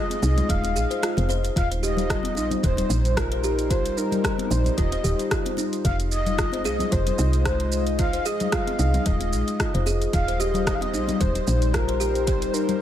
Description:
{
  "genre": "organic downtempo",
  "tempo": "112 BPM",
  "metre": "4/4",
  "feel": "swing 55% on 16ths",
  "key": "unclear",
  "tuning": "A4 = 440 Hz",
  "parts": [
    { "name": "breathy flute-like synth lead", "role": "melody", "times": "0.0-12.8 s", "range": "Bb4 to F5", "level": "-29 LUFS", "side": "left 1 dB", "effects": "analog chorus, cassette tape, analog delay" },
    { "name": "warm analog pad", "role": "sustained chords", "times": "0.0-12.8 s", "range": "G3 to Eb5", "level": "-30 LUFS", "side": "left 2 dB", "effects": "chorus, sidechain pumping" },
    { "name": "kalimba", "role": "arpeggios", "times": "0.0-12.8 s", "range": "Eb4 to C5", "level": "-29 LUFS", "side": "equal", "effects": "vintage 12-bit sampler grit, analog delay" },
    { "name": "deep house drum kit", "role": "drums", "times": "0.1-12.8 s", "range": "hi-hat, rim click, shaker", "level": "-31 LUFS", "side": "right 1 dB", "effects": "overdrive, studio reverb, dub echo" },
    { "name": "congas", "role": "percussion", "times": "0.1-12.8 s", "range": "none", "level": "-32 LUFS", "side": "left 6 dB", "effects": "dub echo" },
    { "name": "woody FM bass", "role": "bass", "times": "0.2-12.5 s", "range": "Eb1 to C2", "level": "-24 LUFS", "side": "equal", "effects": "sidechain pumping" },
    { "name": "electronic kick drum", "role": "drums", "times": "0.5-12.4 s", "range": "none", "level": "-27 LUFS", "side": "equal", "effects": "studio reverb" }
  ],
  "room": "light reverb, digital ambience",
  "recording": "echo-heavy mix",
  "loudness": "-21 LUFS",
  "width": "side -11 dB against mid",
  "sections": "0.0-12.8 A section",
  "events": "kick drops out 1.0-1.6",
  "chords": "0.0 Fm7; 1.6 Eb6; 5.8 Fm7; 10.1 Eb6",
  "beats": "0.49 1.02 | 1.56 2.10 2.63 3.17 | 3.70 4.24 4.78 5.31 | 5.85 6.38 6.92 7.45 | 7.99 8.53 9.06 9.60 | 10.13 10.67 11.20 11.74 | 12.28 12.81"
}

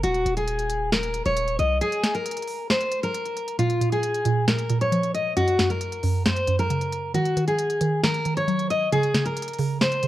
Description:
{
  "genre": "hip hop, trap",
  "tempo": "135 BPM",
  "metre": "4/4",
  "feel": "half-time",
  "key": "unclear",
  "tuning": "A4 = 439 Hz",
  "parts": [
    { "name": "fingerpicked steel-string acoustic guitar", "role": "melody", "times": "0.0-10.1 s", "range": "F4 to Eb5", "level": "-24 LUFS", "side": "left 1 dB", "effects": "none" },
    { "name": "hard-hitting 808-style bass", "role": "bass", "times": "0.0-1.8 s", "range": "Eb1 to C2", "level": "-28 LUFS", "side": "equal", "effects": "none" },
    { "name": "trap drum kit", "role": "drums", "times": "0.0-10.1 s", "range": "hi-hat, snare drum", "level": "-27 LUFS", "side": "equal", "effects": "overdrive" },
    { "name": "mallet-like synth pluck", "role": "accompaniment", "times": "3.6-10.1 s", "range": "Gb2 to Gb3", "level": "-25 LUFS", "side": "right 2 dB", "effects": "chorus, phaser" }
  ],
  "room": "light reverb",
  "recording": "worn, warbling old tape, cassette tape, warbly pitch drift",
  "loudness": "-21 LUFS",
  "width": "side -14 dB against mid",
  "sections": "0.0-10.1 A section",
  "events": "break 1.8-3.6; kick muted 3.6-10.1",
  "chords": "0.0 Ebsus4; 1.8 N.C.; 3.6 Bb5; 5.4 Gb; 7.1 Ebm; 8.9 Db5",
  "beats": "| 0.03 0.48 0.92 1.37 | 1.81 2.26 2.70 3.15 | 3.59 4.03 4.48 4.92 | 5.37 5.81 6.26 6.70 | 7.14 7.59 8.03 8.48 | 8.92 9.37 9.81"
}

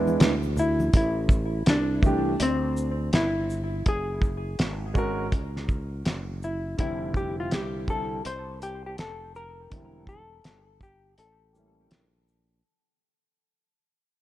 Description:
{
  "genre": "hip hop, jazz-hop",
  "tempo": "82 BPM",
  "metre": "4/4",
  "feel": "swing 63% on 16ths",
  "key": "A minor",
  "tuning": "A4 = 440 Hz",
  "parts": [
    { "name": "hollow-body jazz guitar", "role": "melody", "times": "0.0-12.2 s", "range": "C4 to C5", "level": "-29 LUFS", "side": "left 1 dB", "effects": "tape echo" },
    { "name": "dark grand piano", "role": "accompaniment", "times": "0.0-12.0 s", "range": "D3 to A#4", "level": "-30 LUFS", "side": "right 2 dB", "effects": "none" },
    { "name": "sustaining fretless electric bass", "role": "bass", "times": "0.0-12.6 s", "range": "E1 to E2", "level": "-31 LUFS", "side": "right 1 dB", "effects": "none" },
    { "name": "congas and tube shaker", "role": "percussion", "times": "0.1-0.9 s", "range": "none", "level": "-34 LUFS", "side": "left 2 dB", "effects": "none" },
    { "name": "cloth-damped thuddy drum kit", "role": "drums", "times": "0.2-12.5 s", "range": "hi-hat, kick drum, shaker, snare drum", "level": "-23 LUFS", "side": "equal", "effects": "none" }
  ],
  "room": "light reverb, small room reverb",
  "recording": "none",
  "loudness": "-24 LUFS",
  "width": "side -14 dB against mid",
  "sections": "0.9-12.6 A section",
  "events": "fade-out 0.9-12.6; break 11.2-12.6",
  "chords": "0.0 E7; 0.9 Am7; 3.9 F#sus2; 6.8 Fsus2; 9.7 C13/E; 11.2 A7b9",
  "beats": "0.20 | 0.94 1.67 2.40 3.13 | 3.86 4.59 5.33 6.06 | 6.79 7.52 8.25 8.98 | 9.71 10.45 11.18 11.91"
}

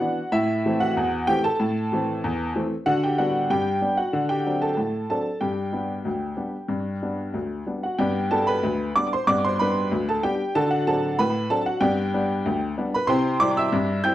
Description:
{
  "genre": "ragtime piano",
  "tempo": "94 BPM",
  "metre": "2/4",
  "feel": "straight",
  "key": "G major",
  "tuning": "A4 = 438 Hz",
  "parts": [
    { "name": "clear upright piano", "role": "solo", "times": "0.0-14.1 s", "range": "D2 to G6", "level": "-21 LUFS", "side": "equal", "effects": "slapback echo" }
  ],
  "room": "moderate booth ambience, RT60 0.2 s",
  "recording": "dry, close 1970s-style studio recording",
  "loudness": "-21 LUFS",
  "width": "side -13 dB against mid",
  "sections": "0.0-8.0 A section; 8.0-14.1 B section",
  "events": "none",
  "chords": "0.3 Am; 2.9 G/D; 4.1 D7; 5.4 G; 10.5 D7; 11.8 G; 13.1 C",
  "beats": "| 0.32 0.95 | 1.59 2.23 | 2.86 3.50 | 4.13 4.77 | 5.41 6.06 | 6.70 7.35 | 7.99 8.63 | 9.27 9.90 | 10.54 11.18 | 11.81 12.45 | 13.08 13.72"
}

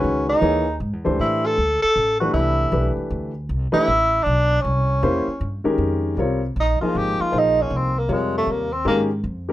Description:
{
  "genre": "jazz",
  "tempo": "157 BPM",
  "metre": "3/4",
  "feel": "swing 64% on 8ths",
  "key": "F minor from 5.8 s",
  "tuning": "A4 = 440 Hz",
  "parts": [
    { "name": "warm tenor saxophone", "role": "melody", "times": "0.0-9.0 s", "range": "Ab3 to A4", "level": "-20 LUFS", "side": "right 1 dB", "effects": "none" },
    { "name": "warm grand piano", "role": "accompaniment", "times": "0.0-9.5 s", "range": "C3 to Eb5", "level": "-22 LUFS", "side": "left 2 dB", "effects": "none" },
    { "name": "upright bass", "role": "bass", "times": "0.0-9.5 s", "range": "Ab1 to A2", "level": "-24 LUFS", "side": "equal", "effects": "none" }
  ],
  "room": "light reverb",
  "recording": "rough home demo mix",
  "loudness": "-18 LUFS",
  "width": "side -14 dB against mid",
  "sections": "0.0-5.8 A section; 5.8-9.5 B section",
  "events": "tenor saxophone solo 5.8-9.5",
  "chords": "0.0 C#m11; 1.2 Am11; 4.6 C7b9; 5.8 Fm9",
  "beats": "| 0.03 0.42 0.80 | 1.19 1.57 1.95 | 2.34 2.72 3.10 | 3.49 3.87 4.25 | 4.64 5.02 5.40 | 5.79 6.17 6.55 | 6.94 7.32 7.70 | 8.09 8.47 8.85 | 9.24"
}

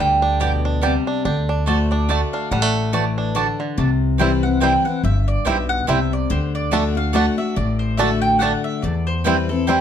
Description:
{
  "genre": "bluegrass",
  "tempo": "143 BPM",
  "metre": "3/4",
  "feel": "swing 56% on 8ths",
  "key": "unclear",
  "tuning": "A4 = 440 Hz",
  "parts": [
    { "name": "mandolin", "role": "melody", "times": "0.0-9.8 s", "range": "G4 to G5", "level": "-23 LUFS", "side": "right 2 dB", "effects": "none" },
    { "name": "picked steel-string acoustic guitar", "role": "accompaniment", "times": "0.0-9.8 s", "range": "E2 to F#4", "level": "-22 LUFS", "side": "left 6 dB", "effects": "none" },
    { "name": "bluegrass banjo", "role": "arpeggios", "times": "0.0-9.8 s", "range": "D3 to G4", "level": "-24 LUFS", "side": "right 4 dB", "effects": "none" },
    { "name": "upright bass", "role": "bass", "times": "0.0-9.8 s", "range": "G1 to E2", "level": "-22 LUFS", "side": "equal", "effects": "none" },
    { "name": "mandolin", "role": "stabs", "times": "0.4-9.8 s", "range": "A3 to A5", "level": "-25 LUFS", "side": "right 7 dB", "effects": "tape echo" }
  ],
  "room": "light reverb",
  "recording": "dark, warm production",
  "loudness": "-17 LUFS",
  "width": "side -9 dB against mid",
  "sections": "0.0-3.8 A section; 3.8-9.8 B section",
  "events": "none",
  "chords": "0.0 G; 1.3 D; 3.8 C; 6.3 D; 8.8 C/E",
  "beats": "0.41 0.83 | 1.25 1.68 2.10 | 2.52 2.94 3.36 | 3.78 4.20 4.62 | 5.04 5.46 5.88 | 6.30 6.72 7.14 | 7.57 7.99 8.41 | 8.83 9.25 9.67"
}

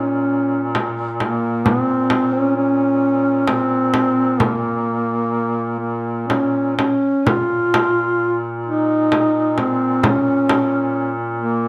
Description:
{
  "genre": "caucasian folk, Caucasian lament",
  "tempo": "65 BPM",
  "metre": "3/4",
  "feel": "rubato",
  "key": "Bb minor",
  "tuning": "A4 = 439 Hz",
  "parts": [
    { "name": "dark duduk", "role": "melody", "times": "0.0-11.7 s", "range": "Bb3 to F4", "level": "-20 LUFS", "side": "equal", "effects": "none" },
    { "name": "warm duduk", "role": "drone", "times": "0.0-11.7 s", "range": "Bb2", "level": "-27 LUFS", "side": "equal", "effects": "none" },
    { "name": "frame drum", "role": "percussion", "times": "0.7-10.7 s", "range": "none", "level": "-23 LUFS", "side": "equal", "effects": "none" }
  ],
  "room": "moderate echo chamber reverb, RT60 1.4 s, studio ambience",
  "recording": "none",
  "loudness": "-18 LUFS",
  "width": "mono",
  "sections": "0.0-7.3 A section; 7.3-11.7 B section",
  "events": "none",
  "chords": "none",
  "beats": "0.75 | 1.66 2.55 3.47 | 4.39 5.32 6.29 | 7.26 8.20 9.12 | 10.04 10.95"
}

